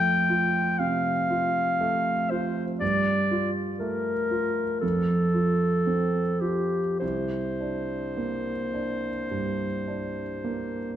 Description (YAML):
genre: classical, impressionist duo for clarinet and grand piano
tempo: 50-61 BPM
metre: 4/4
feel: rubato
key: unclear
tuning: A4 = 440 Hz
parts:
  - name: warm clarinet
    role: melody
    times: 0.0-10.9 s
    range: G4 to G5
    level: -27 LUFS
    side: left 2 dB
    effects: none
  - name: warm concert grand piano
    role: accompaniment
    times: 0.0-11.0 s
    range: C2 to F4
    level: -27 LUFS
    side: right 3 dB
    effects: none
room: wet recital hall reverb, RT60 1.6 s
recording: minimal, uncompressed stereo recording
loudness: -24 LUFS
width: side -10 dB against mid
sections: 0.0-11.0 A section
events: none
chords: 0.0 Fadd9; 2.8 Gm9; 4.8 F; 7.0 Csus2